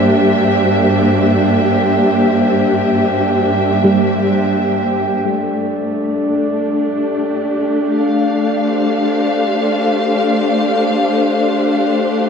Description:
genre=ambient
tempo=free time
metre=none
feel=none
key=G dorian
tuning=A4 = 440 Hz
part: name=dark studio string section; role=sustained chords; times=0.0-12.3 s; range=G2 to F5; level=-14 LUFS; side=left 1 dB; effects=low-pass filter
part: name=glass harmonica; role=texture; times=0.0-12.3 s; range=D4 to G5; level=-19 LUFS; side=right 1 dB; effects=none
part: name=soft round pluck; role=arpeggios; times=3.8-5.9 s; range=G3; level=-20 LUFS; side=right 2 dB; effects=ensemble chorus, ping-pong delay
room=wet cathedral reverb, RT60 6.9 s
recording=in a vast, echoing space, cassette tape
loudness=-13 LUFS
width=side -6 dB against mid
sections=0.0-5.2 A section; 5.2-12.3 B section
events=filter sweep on string section 5.2-12.3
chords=0.0 C9/G; 5.2 G5

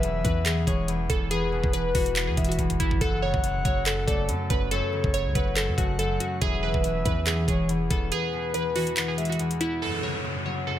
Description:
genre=hip hop, trap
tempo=141 BPM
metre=4/4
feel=half-time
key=unclear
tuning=A4 = 437 Hz
part: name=glassy digital keys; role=melody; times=0.0-10.8 s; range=E4 to C#5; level=-30 LUFS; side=right 2 dB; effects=chorus, ping-pong delay
part: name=breathy flute-like synth lead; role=second line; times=0.0-9.4 s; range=B4 to F#5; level=-32 LUFS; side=left 5 dB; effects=chorus, ping-pong delay
part: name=concert harp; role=accompaniment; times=0.0-10.8 s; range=E2 to C#4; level=-29 LUFS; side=left 2 dB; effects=none
part: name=warm 808-style bass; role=bass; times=0.0-8.1 s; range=E1 to F#2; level=-29 LUFS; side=equal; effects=none
part: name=trap drum kit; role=drums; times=0.0-9.7 s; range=handclaps, hi-hat, kick drum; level=-27 LUFS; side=equal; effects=none
part: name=downlifter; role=sound effects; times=9.8-10.8 s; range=none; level=-32 LUFS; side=left 1 dB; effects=none
room=little or no reverb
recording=none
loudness=-23 LUFS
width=side -12 dB against mid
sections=0.0-9.8 A section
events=drum fill 2.6-3.0; kick muted 8.1-9.8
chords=0.0 E; 3.0 F#m; 6.4 E; 9.8 F#m

